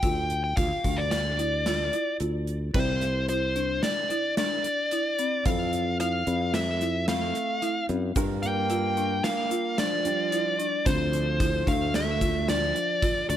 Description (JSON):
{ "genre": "progressive instrumental, band music in an uneven meter", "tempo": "111 BPM", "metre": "5/4", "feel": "straight", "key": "D minor", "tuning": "A4 = 439 Hz", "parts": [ { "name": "dark smooth lead guitar", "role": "melody", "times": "0.0-13.4 s", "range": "C5 to G5", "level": "-28 LUFS", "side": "left 1 dB", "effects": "overdrive, plate reverb, analog delay" }, { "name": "folk marimba with medium mallets", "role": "arpeggios", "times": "0.0-13.4 s", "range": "C4 to F4", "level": "-32 LUFS", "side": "left 3 dB", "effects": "plate reverb" }, { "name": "sustaining fretless electric bass", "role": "bass", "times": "0.0-13.4 s", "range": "C2 to G2", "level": "-29 LUFS", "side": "equal", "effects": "none" }, { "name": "gated 80s drum kit", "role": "drums", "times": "0.0-13.4 s", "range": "crash cymbal, hi-hat, kick drum, snare drum", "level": "-30 LUFS", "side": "equal", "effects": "none" }, { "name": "warm concert grand piano", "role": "accompaniment", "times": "2.7-13.4 s", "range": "C3 to D5", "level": "-37 LUFS", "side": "right 8 dB", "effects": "plate reverb" }, { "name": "warm alto saxophone", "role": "second line", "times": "7.1-13.3 s", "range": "F3 to Bb3", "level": "-33 LUFS", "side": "right 9 dB", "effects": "plate reverb" }, { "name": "egg shaker", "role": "percussion", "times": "8.2-12.9 s", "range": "none", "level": "-42 LUFS", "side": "left 16 dB", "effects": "none" } ], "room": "moderate studio ambience, RT60 0.5 s", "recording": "none", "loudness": "-24 LUFS", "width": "side -10 dB against mid", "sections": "0.0-2.7 A section; 2.7-13.4 B section", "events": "none", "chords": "0.0 Dmadd9; 2.7 Cadd9; 5.5 Fmaj7; 8.2 Gm7; 10.9 Dm7" }